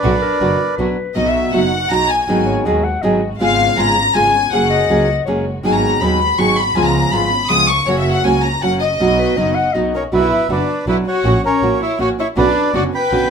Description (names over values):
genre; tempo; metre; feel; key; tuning
tango; 161 BPM; 3/4; rubato; B major, B harmonic minor from 10.1 s; A4 = 440 Hz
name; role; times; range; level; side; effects
bandoneon; melody; 0.0-0.8, 9.9-13.3 s; A#4 to B5; -18 LUFS; right 3 dB; none
warm symphonic violin section; second line; 0.0-13.3 s; C#4 to D#6; -17 LUFS; left 4 dB; none
nylon-string guitar; accompaniment; 0.0-13.3 s; B2 to G#4; -18 LUFS; right 2 dB; none
dark studio string section; stabs; 0.0-13.3 s; G#3 to F#4; -28 LUFS; right 2 dB; none
clear double bass; bass; 0.0-13.3 s; F#1 to D#2; -22 LUFS; equal; none
breathy clarinet; second line; 0.2-5.5, 9.2-10.1 s; A#4 to F#5; -21 LUFS; left 7 dB; none
room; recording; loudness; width
moderate large studio reverb, RT60 1.0 s; minimal, uncompressed stereo recording; -13 LUFS; side -6 dB against mid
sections
0.0-1.2 A section; 1.2-10.1 B section; 10.1-13.3 A section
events
violin section solo 1.2-10.1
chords
0.0 Bm; 1.2 B; 2.3 G#m7; 3.4 C#7/G#; 4.5 F#add9; 5.6 G#m7; 6.8 C#7; 7.9 F#; 9.0 B; 10.1 Bm; 11.2 F#/A#; 12.4 Bmadd9